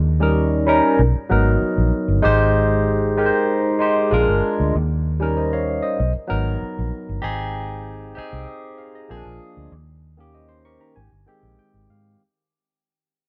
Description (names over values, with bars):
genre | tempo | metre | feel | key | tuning
lush 1970s-style soul | 96 BPM | 4/4 | straight | Ab major | A4 = 440 Hz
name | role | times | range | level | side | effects
vintage muted fingered electric bass | bass | 0.0-12.1 s | G1 to Ab2 | -23 LUFS | equal | none
barky tine electric piano | accompaniment | 0.2-12.2 s | Eb3 to Db6 | -22 LUFS | equal | overdrive, phaser
room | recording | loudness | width
light reverb, digital ambience | none | -19 LUFS | mono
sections
0.0-12.2 A section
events
fade-out 0.0-12.2; tine electric piano fill 10.3-12.2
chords
0.0 Eb7; 1.0 Bmaj7; 2.2 Abmaj7; 4.1 Bb7; 4.7 Eb7; 6.0 Bmaj7; 7.2 Abmaj7; 9.1 Bb7; 9.7 Eb7; 11.0 Abmaj7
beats
0.37 1.00 1.62 | 2.24 2.87 3.49 4.11 | 4.74 5.36 5.98 6.61 | 7.23 7.85 8.47 9.10 | 9.72 10.34 10.96 11.59